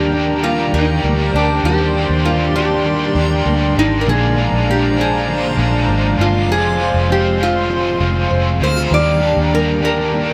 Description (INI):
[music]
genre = dream pop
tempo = 99 BPM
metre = 4/4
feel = straight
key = Eb major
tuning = A4 = 441 Hz
[part]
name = metal-body resonator slide guitar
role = melody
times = 0.0-10.3 s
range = D4 to D5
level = -22 LUFS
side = equal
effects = tape echo
[part]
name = biting overdriven guitar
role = accompaniment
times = 0.0-10.3 s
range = Bb2 to Ab4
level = -23 LUFS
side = equal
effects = harmonic tremolo, lush chorus
[part]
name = hollow soft pad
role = sustained chords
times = 0.0-10.3 s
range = Ab3 to C6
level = -24 LUFS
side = equal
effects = chorus
[part]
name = fingerpicked twelve-string acoustic guitar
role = arpeggios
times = 0.0-10.3 s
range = Bb2 to Bb4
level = -25 LUFS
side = equal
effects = subtle chorus, tape echo
[part]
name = vintage muted fingered electric bass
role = bass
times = 0.0-10.3 s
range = F1 to Eb2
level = -21 LUFS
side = equal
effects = none
[sound]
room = light reverb, studio reverb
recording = none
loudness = -16 LUFS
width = mono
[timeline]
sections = 0.0-10.3 A section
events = none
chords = 0.0 Ebmaj7; 4.1 Bb7; 6.5 Fm; 8.9 Ebmaj7